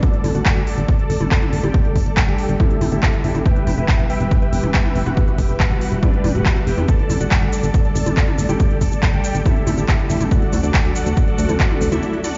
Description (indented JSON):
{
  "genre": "uplifting trance",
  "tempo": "140 BPM",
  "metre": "4/4",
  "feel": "straight",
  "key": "G major",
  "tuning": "A4 = 441 Hz",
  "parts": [
    { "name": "supersaw chords", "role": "melody", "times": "0.0-12.4 s", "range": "D4 to A5", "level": "-28 LUFS", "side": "equal", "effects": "phaser, sidechain pumping, low-pass filter, tape echo" },
    { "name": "analog string pad", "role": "sustained chords", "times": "0.0-12.4 s", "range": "F#3 to E5", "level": "-31 LUFS", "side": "equal", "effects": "ensemble chorus, sidechain pumping" },
    { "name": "big-room dance drum kit", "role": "drums", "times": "0.0-12.4 s", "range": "handclaps, hi-hat, shaker, toms", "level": "-26 LUFS", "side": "equal", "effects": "overdrive, sidechain pumping on hats, sidechain pumping on toms, sidechain pumping on perc" },
    { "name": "electronic kick drum", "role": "drums", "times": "0.0-11.7 s", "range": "none", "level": "-19 LUFS", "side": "equal", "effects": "none" },
    { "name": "solid FM bass", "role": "bass", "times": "0.2-12.0 s", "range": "D1 to E2", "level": "-22 LUFS", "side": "equal", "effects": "sidechain pumping" }
  ],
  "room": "little or no reverb",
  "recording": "played on a big sound system in a bare room, large studio reverb, nothing above 7.5 kHz",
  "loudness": "-18 LUFS",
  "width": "mono",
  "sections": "0.0-12.4 A section",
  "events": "filter sweep on analog synth pad 0.0-12.4; break 12.0-12.4",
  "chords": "0.0 Gsus2; 3.5 Em; 6.9 Gsus2; 10.3 D",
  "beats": "| 0.03 0.46 0.88 1.31 | 1.74 2.17 2.60 3.03 | 3.46 3.88 4.31 4.74 | 5.17 5.60 6.03 6.46 | 6.88 7.31 7.74 8.17 | 8.60 9.03 9.46 9.88 | 10.31 10.74 11.17 11.60 | 12.03"
}